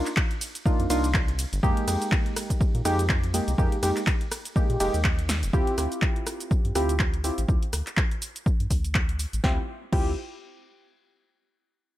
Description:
deep house; 123 BPM; 4/4; swing 57% on 16ths; A4 = 440 Hz
warm analog keys; stabs; 0.0-10.1 s; Ab3 to G4; -28 LUFS; equal; chorus, sidechain pumping, digital delay
punchy analog drum machine; drums; 0.1-10.0 s; crash cymbal, handclaps, hi-hat, ride cymbal, rim click, shaker, snare drum; -31 LUFS; equal; overdrive
electronic kick drum; drums; 0.2-10.0 s; -24 LUFS; equal; overdrive
round analog bass; bass; 0.8-10.2 s; F1 to Bb2; -28 LUFS; equal; sidechain pumping
digital ambience; -23 LUFS; side -14 dB against mid
0.0-5.5 A section; 5.5-9.4 B section; 9.4-11.4 C section
drop 0.0-5.5; drum fill 5.3; filter sweep on analog synth bass 5.5-9.4
0.0 Cm11; 1.6 Fm11; 5.5 Dm11
0.17 0.66 1.15 | 1.63 2.12 2.61 3.10 | 3.58 4.07 4.56 5.05 | 5.54 6.02 6.51 7.00 | 7.49 7.97 8.46 8.95 | 9.44 9.93

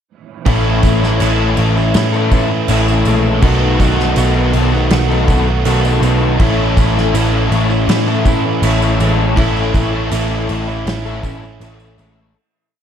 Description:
rock, shoegaze and dream pop; 81 BPM; 4/4; straight; A lydian; A4 = 442 Hz
crunchy overdriven guitar; riff; 0.5-12.3 s; A2 to A4; -19 LUFS; left 12 dB; ensemble chorus
direct-recorded clean electric guitar; riff; 0.5-12.3 s; A2 to F#4; -20 LUFS; right 10 dB; reverse reverb
tight distorted guitar; riff; 0.5-12.3 s; A2 to F#4; -22 LUFS; left 1 dB; distortion
vintage muted picked electric bass; bass; 0.5-12.3 s; A1 to A2; -16 LUFS; equal
loose indie drum kit; drums; 0.5-12.2 s; crash cymbal, kick drum, snare drum; -18 LUFS; equal
tambourine; percussion; 0.8-12.2 s; -37 LUFS; right 6 dB
small room ambience; dark, warm production; -12 LUFS; side -8 dB against mid
0.5-12.4 A section
fade-out 9.4-12.4
0.5 Amaj7; 3.4 B7; 6.4 Amaj7
| 0.46 1.21 1.95 2.69 | 3.44 4.18 4.92 5.66 | 6.40 7.14 7.89 8.63 | 9.37 10.12 10.86 11.61

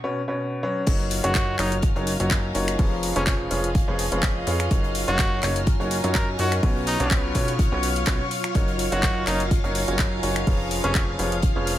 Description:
piano house; 125 BPM; 4/4; swing 54% on 16ths; F# major; A4 = 441 Hz
clear upright piano; riff; 0.0-11.7 s; B2 to C#5; -27 LUFS; equal; sidechain pumping, ping-pong delay
string machine, violins; sustained chords; 0.9-11.8 s; E#4 to E#5; -32 LUFS; equal; ensemble chorus, sidechain pumping
plucky analog bass; bass; 0.9-11.8 s; E#1 to F#2; -27 LUFS; equal; sidechain pumping
electronic kick drum; drums; 0.9-11.5 s; -22 LUFS; equal
house drum kit; drums; 0.9-11.8 s; crash cymbal, finger snaps, handclaps, hi-hat; -28 LUFS; left 1 dB
loose indie drum kit; drums; 0.9-11.8 s; hi-hat, snare drum; -40 LUFS; left 3 dB
clear trumpet; melody; 1.2-11.0 s; C#4 to A#4; -30 LUFS; equal; ping-pong delay
rich chamber string section; texture; 1.7-11.8 s; F#3 to C#6; -33 LUFS; equal; sidechain pumping
studio ambience; -20 LUFS; side -13 dB against mid
0.9-11.8 A section
break 0.0-0.9; drop 0.9-11.8
0.0 Bsus2; 0.9 F#6; 2.8 C#7/E#; 4.7 F#6; 6.6 Bsus2; 8.6 F#6; 10.5 C#7/E#
0.39 | 0.87 1.35 1.83 2.31 | 2.79 3.27 3.75 4.23 | 4.71 5.19 5.67 6.15 | 6.63 7.11 7.59 8.07 | 8.55 9.03 9.51 9.99 | 10.47 10.95 11.43

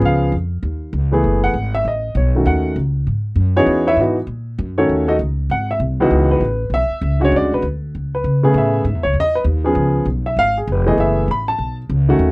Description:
jazz piano trio; 197 BPM; 4/4; swing 61% on 8ths; C# minor; A4 = 441 Hz
warm upright piano; melody; 0.0-12.3 s; C#2 to B5; -16 LUFS; equal
upright bass; bass; 0.0-12.3 s; E#1 to C#3; -18 LUFS; equal
little or no reverb; dry, close 1970s-style studio recording; -15 LUFS; side -26 dB against mid
0.0-6.1 A section; 6.1-12.3 B section
upright piano solo 6.1-12.3
0.0 C#7; 1.2 F#m11; 2.5 D#m7b5; 3.1 G#5; 3.7 C#m11; 4.3 F#m; 4.9 D#m7b5; 5.5 G#7b13; 6.1 C#m11; 7.3 E13 (rootless); 8.5 Amaj9; 9.8 C#7; 11.0 F#m11
| 0.03 0.33 0.64 0.94 | 1.25 1.55 1.85 2.16 | 2.46 2.77 3.07 3.37 | 3.68 3.98 4.29 4.59 | 4.89 5.20 5.50 5.81 | 6.11 6.42 6.72 7.02 | 7.33 7.63 7.94 8.24 | 8.54 8.85 9.15 9.46 | 9.76 10.06 10.37 10.67 | 10.98 11.28 11.58 11.89 | 12.19

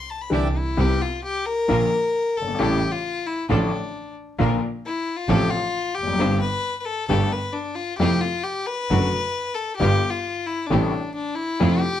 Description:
tango; 133 BPM; 4/4; rubato; C major; A4 = 440 Hz
clear violin; second line; 0.0-12.0 s; D4 to C6; -25 LUFS; left 4 dB
bandoneon; melody; 0.3-0.5 s; D5 to G5; -30 LUFS; right 6 dB; plate reverb
warm upright piano; accompaniment; 0.3-11.8 s; F#1 to G4; -23 LUFS; left 2 dB
rich symphonic string section; stabs; 0.3-11.8 s; A3 to B4; -31 LUFS; equal
warm double bass; bass; 0.3-11.8 s; F1 to F2; -24 LUFS; right 2 dB
moderate studio reverb, RT60 0.6 s; dark, warm production; -20 LUFS; side -11 dB against mid
0.8-12.0 A section
band accent 0.0-0.8; violin solo 0.8-12.0
0.0 Cadd9; 0.8 Cmaj7; 1.7 Bb; 2.6 A7; 3.5 Dm/A; 4.4 Bb; 5.3 F/A; 6.2 Gsus4; 7.1 Gadd9; 8.0 Fmaj7; 8.9 D/F#; 9.8 G7; 10.7 Am7
0.32 | 0.78 1.23 1.69 2.14 | 2.59 3.04 3.49 3.94 | 4.39 4.84 5.29 5.74 | 6.19 6.64 7.09 7.55 | 8.00 8.46 8.91 9.37 | 9.82 10.27 10.72 11.17 | 11.62

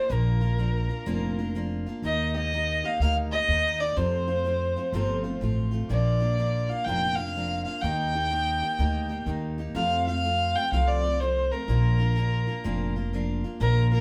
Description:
honky-tonk and classic country; 124 BPM; 4/4; swing 64% on 8ths; Bb major; A4 = 441 Hz
dark fiddle; melody; 0.0-14.0 s; Bb4 to G5; -30 LUFS; equal
picked steel-string acoustic guitar; accompaniment; 0.0-14.0 s; F2 to G4; -35 LUFS; equal
upright bass; bass; 0.1-14.0 s; F1 to F2; -29 LUFS; equal
moderate studio reverb, RT60 0.8 s; band playing live in one room; -26 LUFS; mono
0.0-13.6 A section
0.0 Bb; 2.0 Eb; 4.0 F; 5.9 Bb; 7.8 Eb; 9.8 F; 11.7 Bb
| 0.10 0.59 1.07 1.55 | 2.04 2.52 3.00 3.48 | 3.96 4.45 4.93 5.41 | 5.89 6.38 6.86 7.34 | 7.83 8.31 8.79 9.27 | 9.76 10.24 10.72 11.20 | 11.68 12.17 12.65 13.13 | 13.61

